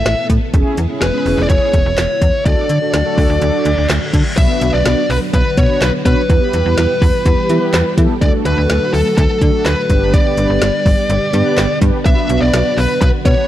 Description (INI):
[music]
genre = synth-pop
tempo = 125 BPM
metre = 4/4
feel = straight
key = B minor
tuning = A4 = 442 Hz
[part]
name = high-gain lead guitar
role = melody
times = 0.0-13.5 s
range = A4 to E5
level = -18 LUFS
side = left 1 dB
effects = distortion, analog delay
[part]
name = string machine, full ensemble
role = sustained chords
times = 0.0-13.5 s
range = C#3 to A4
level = -22 LUFS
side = equal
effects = ensemble chorus
[part]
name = slap-like FM bass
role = bass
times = 0.0-13.3 s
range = E1 to E3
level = -16 LUFS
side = equal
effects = none
[part]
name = deep house drum kit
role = drums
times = 0.1-13.4 s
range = crash cymbal, handclaps, hi-hat, kick drum, snare drum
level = -16 LUFS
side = equal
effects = none
[part]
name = mellow synth brass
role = accompaniment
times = 0.5-13.5 s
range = A3 to C#5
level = -20 LUFS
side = right 1 dB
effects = chorus
[part]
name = reverse cymbal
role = sound effects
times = 3.6-4.4 s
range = none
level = -27 LUFS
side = left 1 dB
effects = none
[sound]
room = light reverb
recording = dark, warm production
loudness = -12 LUFS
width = side -12 dB against mid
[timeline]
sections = 0.0-4.4 A section; 4.4-13.5 B section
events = reverse cymbal 3.6-4.4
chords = 0.0 Asus2; 0.5 E6; 2.5 D; 4.4 Bm; 6.3 Em; 8.2 D; 9.9 G; 12.1 Bm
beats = 0.06 | 0.54 1.02 1.50 1.98 | 2.46 2.94 3.42 3.90 | 4.38 4.86 5.34 5.82 | 6.30 6.78 7.26 7.74 | 8.22 8.70 9.18 9.66 | 10.14 10.62 11.10 11.58 | 12.06 12.54 13.02